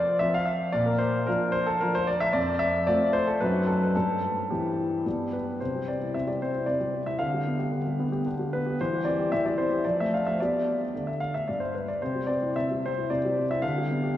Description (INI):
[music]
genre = classical-period piano sonatina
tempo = 112 BPM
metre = 3/4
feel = straight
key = C major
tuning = A4 = 440 Hz
[part]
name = warm concert grand piano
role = solo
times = 0.0-14.2 s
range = F2 to F5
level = -24 LUFS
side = left 1 dB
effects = none
[sound]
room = wet church reverb, RT60 3.5 s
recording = worn, warbling old tape, cassette tape, warbly pitch drift, small room ambience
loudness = -24 LUFS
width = side -12 dB against mid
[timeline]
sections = 0.0-5.6 A section; 5.6-14.2 B section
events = none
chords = 0.0 F5; 0.7 Bb; 2.3 F6; 3.4 B7b9/F#; 3.9 C/G; 5.1 G; 5.6 C; 7.2 G7/D; 8.8 C/E; 9.8 Dm/F; 10.4 G; 12.0 C; 13.6 G7/D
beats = 0.20 | 0.74 1.27 1.80 | 2.32 2.86 3.39 | 3.94 4.50 5.05 | 5.61 6.14 6.68 | 7.21 7.73 8.26 | 8.79 9.31 9.84 | 10.38 10.92 11.46 | 12.01 12.55 13.09 | 13.62 14.15